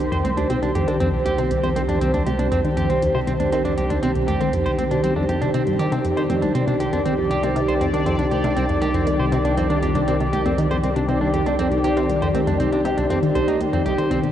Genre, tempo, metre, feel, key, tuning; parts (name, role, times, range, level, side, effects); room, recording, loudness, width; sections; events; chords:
ambient, sequencer-driven space music; 119 BPM; 4/4; straight; C minor; A4 = 436 Hz
sweeping resonant pad; sustained chords; 0.0-14.3 s; Eb3 to D5; -22 LUFS; equal; chorus
tight sequenced synth; riff; 0.0-14.3 s; C2 to Eb3; -24 LUFS; equal; chorus, vintage 12-bit sampler grit, tape echo
round analog bass; bass; 0.0-14.3 s; C2; -28 LUFS; equal
booming analog drum machine; percussion; 0.0-14.3 s; hi-hat, toms; -36 LUFS; left 2 dB; tape echo
semi-hollow electric guitar; arpeggios; 0.1-14.2 s; C4 to C5; -25 LUFS; right 1 dB; auto-pan, tape echo
wet huge ambient reverb, RT60 8.1 s; worn, warbling old tape, cassette tape, warbly pitch drift; -18 LUFS; side -10 dB against mid
0.0-14.3 A section
0.0 Cm